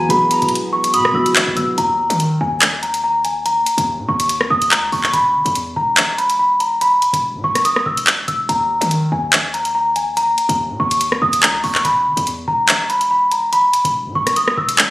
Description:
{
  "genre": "hip hop, drill",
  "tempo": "143 BPM",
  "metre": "4/4",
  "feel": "half-time",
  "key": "Eb phrygian",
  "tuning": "A4 = 438 Hz",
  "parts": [
    { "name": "celesta", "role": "melody", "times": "0.0-14.9 s", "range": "Ab5 to E6", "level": "-16 LUFS", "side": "equal", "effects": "low-pass filter, ping-pong delay" },
    { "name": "silver concert flute", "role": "second line", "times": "0.0-1.3 s", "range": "Bb5 to B5", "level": "-24 LUFS", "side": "equal", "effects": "ping-pong delay" },
    { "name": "dark concert grand piano", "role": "accompaniment", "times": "0.0-1.8 s", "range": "F#3 to Ab4", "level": "-21 LUFS", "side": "equal", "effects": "low-pass filter" },
    { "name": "dark analog pad", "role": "sustained chords", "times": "0.0-1.7 s", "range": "E3 to F#4", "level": "-26 LUFS", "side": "right 1 dB", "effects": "chorus" },
    { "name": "hard-hitting 808-style bass", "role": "bass", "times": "0.0-14.9 s", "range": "E1 to Eb3", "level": "-26 LUFS", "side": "equal", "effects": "none" },
    { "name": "drill drum kit", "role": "drums", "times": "0.1-14.9 s", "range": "handclaps, hi-hat, rim click", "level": "-17 LUFS", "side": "equal", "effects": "overdrive" }
  ],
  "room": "light reverb, small room ambience",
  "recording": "recorded on a phone in the room, studio reverb, compression",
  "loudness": "-14 LUFS",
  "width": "side -18 dB against mid",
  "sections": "0.0-1.8 A section; 1.8-14.9 B section",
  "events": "none",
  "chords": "0.0 Esus2; 1.8 Eb5; 5.1 E5; 8.5 Eb5; 11.8 E5"
}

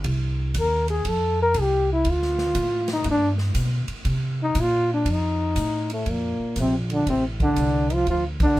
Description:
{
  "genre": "jazz, small-group swing and bop",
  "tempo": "120 BPM",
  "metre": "4/4",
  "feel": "swing 67% on 8ths",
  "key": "Bb major",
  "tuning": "A4 = 441 Hz",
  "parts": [
    { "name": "upright bass", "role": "bass", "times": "0.0-8.6 s", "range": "A1 to C3", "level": "-25 LUFS", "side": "equal", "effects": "none" },
    { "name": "swinging big-band drum kit", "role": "drums", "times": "0.0-8.6 s", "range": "hi-hat, kick drum, ride cymbal, snare drum", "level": "-30 LUFS", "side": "right 1 dB", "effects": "none" },
    { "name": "mellow trombone", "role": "melody", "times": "0.6-8.6 s", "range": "A3 to Bb4", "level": "-22 LUFS", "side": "left 1 dB", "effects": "none" },
    { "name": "breathy trombone", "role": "second line", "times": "5.9-8.6 s", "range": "A2 to F3", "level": "-29 LUFS", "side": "right 4 dB", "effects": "none" }
  ],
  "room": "moderate booth ambience, RT60 0.2 s",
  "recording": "none",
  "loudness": "-20 LUFS",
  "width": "side -16 dB against mid",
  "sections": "0.0-6.1 A section; 6.1-8.6 B section",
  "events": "trombone solo 0.0-6.1; band accent 8.3",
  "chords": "0.0 Cm; 1.1 F5; 2.1 Dm; 3.1 G; 4.1 Bbsus2; 5.1 F7; 6.1 Bbmaj7; 8.1 Dm"
}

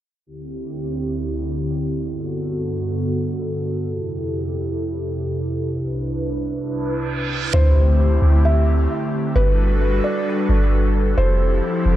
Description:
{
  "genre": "hip hop",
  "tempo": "132 BPM",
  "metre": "4/4",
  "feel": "half-time",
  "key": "unclear",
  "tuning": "A4 = 440 Hz",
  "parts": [
    { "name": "airy breathy pad", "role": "sustained chords", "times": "0.3-12.0 s", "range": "C2 to B4", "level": "-22 LUFS", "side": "equal", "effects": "chorus" },
    { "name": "reverse cymbal and impact", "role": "sound effects", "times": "6.9-9.4 s", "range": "none", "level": "-29 LUFS", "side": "right 3 dB", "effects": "none" },
    { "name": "felt-muted upright piano", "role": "melody", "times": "7.5-12.0 s", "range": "B4 to E5", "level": "-25 LUFS", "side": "equal", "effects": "tape echo" },
    { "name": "soft 808-style bass", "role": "bass", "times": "7.5-12.0 s", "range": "F1 to D2", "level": "-16 LUFS", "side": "equal", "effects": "none" }
  ],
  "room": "light reverb",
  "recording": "dark, warm production, low-pass filter",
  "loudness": "-18 LUFS",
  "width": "side -13 dB against mid",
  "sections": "0.3-7.5 A section; 7.5-12.0 B section",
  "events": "filter sweep 0.3-7.5; reverse cymbal 6.9-7.5; impact 7.5-9.4",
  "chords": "0.3 D9sus4; 2.1 Gmaj9; 3.9 Fmaj9; 5.7 Cmaj9; 7.5 D9sus4; 9.4 Gmaj9; 11.2 Fmaj9"
}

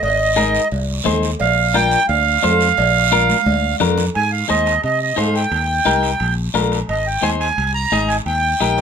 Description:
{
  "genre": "latin, cumbia",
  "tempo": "175 BPM",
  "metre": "4/4",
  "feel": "straight",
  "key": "unclear",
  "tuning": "A4 = 445 Hz",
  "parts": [
    { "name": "accordion", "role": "melody", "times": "0.0-8.8 s", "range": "Eb5 to Bb5", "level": "-17 LUFS", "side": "right 4 dB", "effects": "none" },
    { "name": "fingered electric bass", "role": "bass", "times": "0.0-8.8 s", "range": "Ab1 to C3", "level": "-21 LUFS", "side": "left 1 dB", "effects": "none" },
    { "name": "congas", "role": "percussion", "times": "0.0-8.8 s", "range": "none", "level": "-25 LUFS", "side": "equal", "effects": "none" },
    { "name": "cowbell and timbales", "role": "percussion", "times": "0.0-8.8 s", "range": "none", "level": "-26 LUFS", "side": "right 2 dB", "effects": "none" },
    { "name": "guiro", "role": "percussion", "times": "0.0-8.8 s", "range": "none", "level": "-30 LUFS", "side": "right 6 dB", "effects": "none" },
    { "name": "clean electric guitar", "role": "accompaniment", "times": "0.4-8.8 s", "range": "D4 to Eb5", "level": "-19 LUFS", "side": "left 7 dB", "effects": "none" }
  ],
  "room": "moderate small room ambience, RT60 0.5 s",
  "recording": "minimal, uncompressed stereo recording",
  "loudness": "-14 LUFS",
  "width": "side -7 dB against mid",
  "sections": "0.0-4.1 A section; 4.1-8.8 B section",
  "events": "drum fill 3.3-4.1",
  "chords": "0.0 Ab; 1.4 Bb; 4.1 Ab; 5.5 Eb; 6.2 Bb; 6.9 Ab; 8.3 Eb"
}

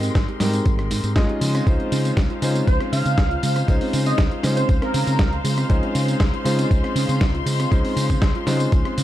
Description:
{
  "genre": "nu-disco, nu disco",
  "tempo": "119 BPM",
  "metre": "4/4",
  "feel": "straight",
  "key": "unclear",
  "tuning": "A4 = 438 Hz",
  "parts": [
    { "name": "warm electric grand piano", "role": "accompaniment", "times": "0.0-9.0 s", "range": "Ab3 to Eb5", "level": "-25 LUFS", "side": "left 1 dB", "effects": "sidechain pumping, tape echo" },
    { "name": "rich studio string section", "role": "sustained chords", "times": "0.0-9.0 s", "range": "Ab3 to C6", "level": "-31 LUFS", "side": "left 4 dB", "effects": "sidechain pumping" },
    { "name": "soft round pluck", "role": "arpeggios", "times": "0.0-9.0 s", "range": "F3 to Ab4", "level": "-30 LUFS", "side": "right 5 dB", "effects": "chorus, sidechain pumping, tape echo" },
    { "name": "fingered electric bass", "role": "bass", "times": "0.0-9.0 s", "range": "Ab1 to Db3", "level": "-23 LUFS", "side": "equal", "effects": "tube saturation" },
    { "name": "dusty soul sampler-style drum kit", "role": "drums", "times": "0.0-9.0 s", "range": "hi-hat, rim click, snare drum, tambourine", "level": "-28 LUFS", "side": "equal", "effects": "small room reverb" },
    { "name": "electronic kick drum", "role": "drums", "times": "0.2-8.8 s", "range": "none", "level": "-20 LUFS", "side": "equal", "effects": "small room reverb" },
    { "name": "wide unison lead", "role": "melody", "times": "2.7-5.3 s", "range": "Bb4 to F5", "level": "-28 LUFS", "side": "right 1 dB", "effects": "lush chorus, tape echo" }
  ],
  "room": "little or no reverb",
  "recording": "none",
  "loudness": "-18 LUFS",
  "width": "side -13 dB against mid",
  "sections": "0.0-9.0 A section",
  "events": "none",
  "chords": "0.0 Abmaj7; 1.4 Dbmaj7"
}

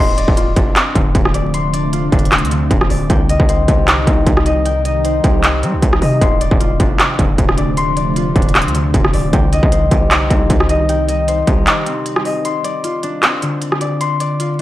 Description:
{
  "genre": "hip hop, trap",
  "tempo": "154 BPM",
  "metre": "4/4",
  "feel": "half-time",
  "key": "D phrygian",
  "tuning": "A4 = 440 Hz",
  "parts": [
    { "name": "ethereal airy pad", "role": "sustained chords", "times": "0.9-12.4 s", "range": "C3 to Eb4", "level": "-24 LUFS", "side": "right 1 dB", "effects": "ensemble chorus, built-in reverb" },
    { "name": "concert harp", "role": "arpeggios", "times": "0.0-14.6 s", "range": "D3 to C6", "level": "-18 LUFS", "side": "left 2 dB", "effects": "low-pass filter, tape echo" },
    { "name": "warm 808-style bass", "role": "bass", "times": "0.0-11.7 s", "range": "D1 to G3", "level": "-19 LUFS", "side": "equal", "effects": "none" },
    { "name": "industrial drum kit", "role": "drums", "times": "0.2-14.6 s", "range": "handclaps, hi-hat, kick drum, rim click", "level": "-14 LUFS", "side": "equal", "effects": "distortion" }
  ],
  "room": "little or no reverb",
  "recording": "dry, gritty hardware recording, vinyl crackle",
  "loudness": "-12 LUFS",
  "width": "side -15 dB against mid",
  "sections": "0.0-12.4 A section; 12.4-14.6 B section",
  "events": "kick muted 11.7-12.4; break 12.4-14.6",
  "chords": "0.0 Dm7; 3.1 Cm; 6.2 Dm7; 9.3 Cm; 12.4 Dm7"
}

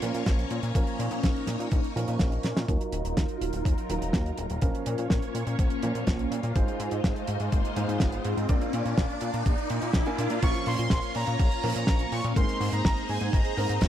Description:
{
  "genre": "italo disco",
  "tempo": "124 BPM",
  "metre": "4/4",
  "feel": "straight",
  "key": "Bb minor",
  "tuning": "A4 = 440 Hz",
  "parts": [
    { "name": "phased string machine", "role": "sustained chords", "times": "0.0-13.9 s", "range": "Gb3 to D5", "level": "-33 LUFS", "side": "equal", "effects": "ensemble chorus, phaser" },
    { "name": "dark concert grand piano", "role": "stabs", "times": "0.0-13.9 s", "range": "F3 to Ab5", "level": "-35 LUFS", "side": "right 2 dB", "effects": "low-pass filter, tape echo" },
    { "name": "chorused synth bass", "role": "bass", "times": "0.0-13.9 s", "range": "Eb1 to Bb2", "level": "-31 LUFS", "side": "equal", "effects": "none" },
    { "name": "damped 70s drum kit", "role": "drums", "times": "0.0-13.9 s", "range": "crash cymbal, hi-hat, snare drum", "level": "-31 LUFS", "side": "right 1 dB", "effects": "none" },
    { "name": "electronic kick drum", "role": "drums", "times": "0.3-13.9 s", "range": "none", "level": "-26 LUFS", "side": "equal", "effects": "overdrive" },
    { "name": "riser", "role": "sound effects", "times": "5.3-10.4 s", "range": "none", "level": "-37 LUFS", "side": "left 1 dB", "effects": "none" },
    { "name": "analog synth brass", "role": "melody", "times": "10.4-13.9 s", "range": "Ab5 to Db6", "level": "-32 LUFS", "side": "equal", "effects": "chorus, cassette tape, tape echo" }
  ],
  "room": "little or no reverb",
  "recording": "dry, close 1970s-style studio recording",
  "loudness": "-25 LUFS",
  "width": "side -11 dB against mid",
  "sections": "0.0-2.7 A section; 2.7-10.4 B section; 10.4-13.9 C section",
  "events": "drum fill 2.4; filter sweep on grand piano 2.7-10.4; filter sweep on string machine 2.7-10.4; riser 5.3-10.4",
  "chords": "0.0 Bbm; 2.7 Ebmadd9; 4.6 Bbm; 6.6 Ab6; 8.5 Bb; 10.4 Bbm; 12.4 Abadd9"
}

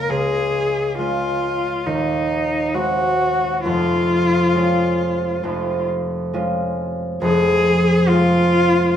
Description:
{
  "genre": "classical, romantic duo for cello and harp",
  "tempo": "67 BPM",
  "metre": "4/4",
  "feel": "rubato",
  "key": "unclear",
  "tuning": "A4 = 439 Hz",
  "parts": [
    { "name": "rich cello", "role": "melody", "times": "0.0-9.0 s", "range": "Eb4 to Bb4", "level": "-19 LUFS", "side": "left 2 dB", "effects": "none" },
    { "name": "concert harp", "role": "accompaniment", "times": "0.0-9.0 s", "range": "Eb1 to Gb4", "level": "-19 LUFS", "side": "right 1 dB", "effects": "none" }
  ],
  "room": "wet recital hall reverb, RT60 1.3 s",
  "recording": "minimal, uncompressed stereo recording",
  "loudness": "-16 LUFS",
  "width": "side -9 dB against mid",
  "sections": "0.0-9.0 A section",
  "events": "none",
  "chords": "0.1 Db; 1.9 Ab7/Eb; 3.6 Db/F; 7.2 Fm"
}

